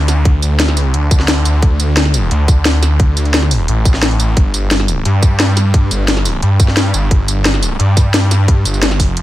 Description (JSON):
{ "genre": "dark technical drum and bass", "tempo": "175 BPM", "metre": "4/4", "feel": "straight", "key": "unclear", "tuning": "A4 = 440 Hz", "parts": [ { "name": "snarling distorted saw bass", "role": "bass", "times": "0.0-9.2 s", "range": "G1 to G2", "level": "-13 LUFS", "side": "equal", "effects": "distortion, overdrive, sidechain pumping" }, { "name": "drum and bass drum kit", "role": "drums", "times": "0.1-9.2 s", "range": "hi-hat, snare drum, tambourine", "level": "-16 LUFS", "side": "left 1 dB", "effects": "none" }, { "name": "electronic kick drum", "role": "drums", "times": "0.3-9.1 s", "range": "none", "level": "-11 LUFS", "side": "equal", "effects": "none" } ], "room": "little or no reverb", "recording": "none", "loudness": "-10 LUFS", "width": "side -15 dB against mid", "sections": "0.0-9.2 A section", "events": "none", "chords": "none" }